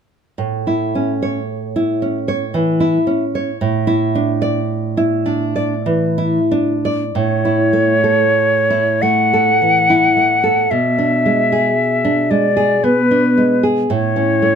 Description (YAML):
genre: romantic duo for flute and classical guitar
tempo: 44-58 BPM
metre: 3/4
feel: rubato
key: A major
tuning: A4 = 440 Hz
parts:
  - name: nylon-string guitar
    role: accompaniment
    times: 0.4-14.6 s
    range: A2 to D5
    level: -15 LUFS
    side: right 1 dB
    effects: none
  - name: concert flute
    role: melody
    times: 7.2-14.6 s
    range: B4 to F#5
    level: -15 LUFS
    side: left 2 dB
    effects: none
room: light reverb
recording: close, detailed microphones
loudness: -13 LUFS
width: side -7 dB against mid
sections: 0.4-7.1 A section; 7.1-14.6 B section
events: none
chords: 0.4 A; 3.6 Asus4; 7.1 A; 10.7 E7/B; 13.9 A